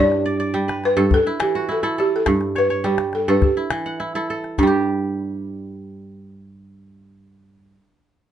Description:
west african traditional, West African string and xylophone music; 104 BPM; 4/4; straight; G lydian; A4 = 440 Hz
balafon; melody; 0.0-7.7 s; D4 to D5; -21 LUFS; equal; plate reverb
kora; arpeggios; 0.0-7.8 s; G2 to F#5; -21 LUFS; right 2 dB
calabash; percussion; 0.1-4.8 s; -21 LUFS; left 3 dB
light reverb; nothing above 11.0 kHz; -18 LUFS; side -10 dB against mid
0.0-4.6 A section; 4.6-6.9 B section
0.0 G; 1.1 Emadd11; 2.3 A9/G; 3.4 Em; 4.6 G5

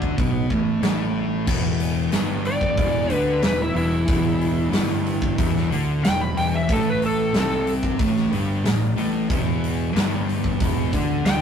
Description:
blues rock power trio and southern rock; 92 BPM; 4/4; straight; A4 = 441 Hz
fuzz guitar; riff; 0.0-11.4 s; E2 to D4; -24 LUFS; left 1 dB; distortion
fuzz fingered electric bass; bass; 0.0-11.4 s; E1 to D2; -27 LUFS; equal; overdrive
big rock drum kit; drums; 0.0-11.4 s; crash cymbal, hi-hat, kick drum, snare drum; -24 LUFS; right 1 dB
overdriven slide guitar; melody; 2.5-11.4 s; E4 to B5; -24 LUFS; equal
moderate stone room reverb, RT60 1.4 s; rough rehearsal-room recording, tube saturation; -19 LUFS; side -7 dB against mid
0.0-1.5 A section; 1.5-11.4 B section
electric slide guitar solo 1.5-11.4
0.0 Asus24; 1.5 Em7; 6.7 Gsus24; 9.3 Em7

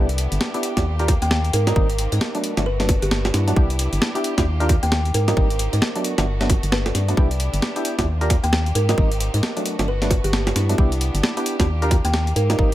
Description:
UK garage, two-step garage; 133 BPM; 4/4; swing 60% on 16ths; A4 = 441 Hz
muted chamber violin section; sustained chords; 0.0-12.7 s; A3 to G4; -33 LUFS; equal; sidechain pumping
percussive organ stab; stabs; 0.0-12.7 s; F#3 to Bb4; -26 LUFS; equal; lush chorus
organ-like FM bass; bass; 0.0-12.7 s; G1 to Ab2; -21 LUFS; equal
breakbeat sampler-style drum kit; drums; 0.1-12.7 s; bongos, hi-hat, snare drum; -24 LUFS; right 1 dB
electronic kick drum; drums; 0.8-12.7 s; -19 LUFS; equal
kalimba; melody; 1.2-12.6 s; E4 to G5; -28 LUFS; right 1 dB; tape echo
little or no reverb; -18 LUFS; side -14 dB against mid
0.0-12.7 A section
0.0 Cmaj9; 0.9 Ebmaj9; 1.5 Abmaj9; 2.4 Gmaj9; 3.6 Cmaj9; 4.5 Ebmaj9; 5.1 Abmaj9; 6.0 Gmaj9; 7.2 Cmaj9; 8.1 Ebmaj9; 8.8 Abmaj9; 9.7 Gmaj9; 10.8 Cmaj9; 11.7 Ebmaj9

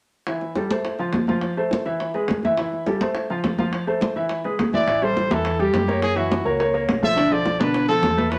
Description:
latin, salsa; 209 BPM; 4/4; straight; A minor; A4 = 440 Hz
clear concert grand piano; accompaniment; 0.3-8.4 s; D3 to F5; -25 LUFS; equal
bongos; percussion; 0.3-8.4 s; -33 LUFS; equal
congas; percussion; 0.3-8.4 s; -28 LUFS; equal
clear trumpet; melody; 4.7-8.4 s; F#4 to E5; -25 LUFS; equal
hollow-body short-scale fingered electric bass; bass; 4.9-8.4 s; A1 to B2; -31 LUFS; equal
moderate studio reverb, RT60 0.6 s; -22 LUFS; mono
0.3-4.9 A section; 4.9-8.4 B section
0.3 Am7; 0.9 F; 1.4 Fmaj7; 2.0 E; 2.6 Am7; 3.2 F; 3.7 Fmaj7; 4.3 E; 4.9 Am7; 6.0 F#7; 7.2 Bm7b5

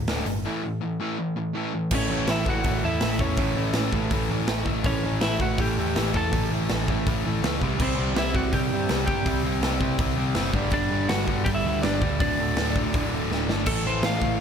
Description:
punk rock; 163 BPM; 4/4; straight; A4 = 440 Hz
distorted electric guitar; riff; 0.0-14.4 s; D2 to C4; -30 LUFS; left 13 dB; overdrive
overdriven semi-hollow guitar; riff; 0.0-14.4 s; D2 to C4; -30 LUFS; right 12 dB
overdriven picked electric bass; bass; 0.0-14.4 s; D1 to G2; -29 LUFS; equal
big rock drum kit; drums; 0.1-14.3 s; crash cymbal, hi-hat, kick drum, snare drum; -27 LUFS; equal
lightly driven lead guitar; melody; 1.9-14.4 s; C4 to A5; -30 LUFS; equal; tape echo
fuzz guitar; riff; 1.9-14.4 s; D2 to C4; -32 LUFS; equal; distortion
little or no reverb; -22 LUFS; side -7 dB against mid
0.0-1.9 A section; 1.9-13.7 B section
break 0.4-1.9; drum fill 13.3-13.7
0.4 A5; 1.9 A; 7.6 C5; 10.6 G5; 12.2 D5; 13.7 A5

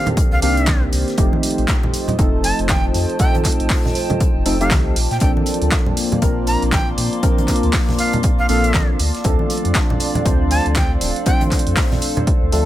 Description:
deep house; 119 BPM; 4/4; swing 60% on 16ths; A4 = 441 Hz
breathy bright jazz flute; melody; 0.0-11.4 s; F5 to Bb5; -24 LUFS; right 1 dB; dub echo
dark analog pad; sustained chords; 0.0-12.7 s; Eb3 to A5; -30 LUFS; equal; chorus, sidechain pumping
percussive organ stab; stabs; 0.0-12.7 s; Eb3 to C5; -22 LUFS; equal; analog chorus, cassette tape, sidechain pumping, tape echo
warbly tape-like pad; texture; 0.0-12.7 s; Bb3 to D6; -27 LUFS; left 2 dB; chorus, built-in reverb, sidechain pumping
punchy analog drum machine; drums; 0.1-12.6 s; handclaps, hi-hat; -24 LUFS; right 1 dB
congas; percussion; 0.1-12.3 s; -24 LUFS; right 2 dB
electronic kick drum; drums; 0.2-12.4 s; -18 LUFS; equal
modern studio drum kit; drums; 0.2-12.7 s; hi-hat, snare drum; -32 LUFS; left 4 dB; high-pass filter on hats, high-pass filter on snare, high-pass filter on room
sub bass with octave; bass; 0.3-12.7 s; D1 to Bb2; -20 LUFS; equal; sidechain pumping
studio ambience; -15 LUFS; side -14 dB against mid
0.0-12.7 A section
0.0 Cm9; 1.2 F7; 5.0 Bbmaj7; 9.0 Dm7

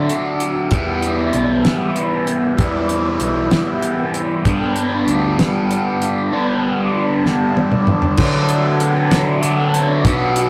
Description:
psychedelic rock; 64 BPM (dotted quarters); 6/8; straight; A4 = 439 Hz
pedal harmonium; sustained chords; 0.0-10.5 s; F#4 to A5; -28 LUFS; equal
cranked stack guitar; riff; 0.0-10.5 s; G2 to E4; -20 LUFS; equal; overdrive, phaser
fuzz picked electric bass; bass; 0.0-10.5 s; B1 to G3; -23 LUFS; equal; overdrive
damped 70s drum kit; drums; 0.1-10.5 s; crash cymbal, hi-hat, kick drum, snare drum, toms; -21 LUFS; equal
moderate stone room reverb, RT60 1.0 s; rough rehearsal-room recording, tube saturation; -17 LUFS; mono
0.0-8.2 A section; 8.2-10.5 B section
drum fill 7.2-8.2
0.0 D; 0.7 Em; 4.4 Gadd9; 8.2 D6

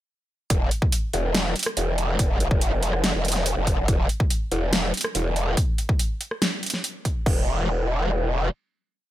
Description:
heavy wobble dubstep; 142 BPM; 4/4; half-time; A4 = 440 Hz
growl bass; bass; 0.5-8.5 s; E1 to F1; -23 LUFS; equal; chorus, overdrive
dubstep drum kit; drums; 0.5-7.4 s; crash cymbal, kick drum; -22 LUFS; equal
dubstep drum kit; drums; 0.5-7.1 s; hi-hat, rim click, snare drum; -25 LUFS; equal
little or no reverb; -21 LUFS; side -14 dB against mid
0.5-7.3 drop; 7.3-9.1 final note
drop 0.5-7.3

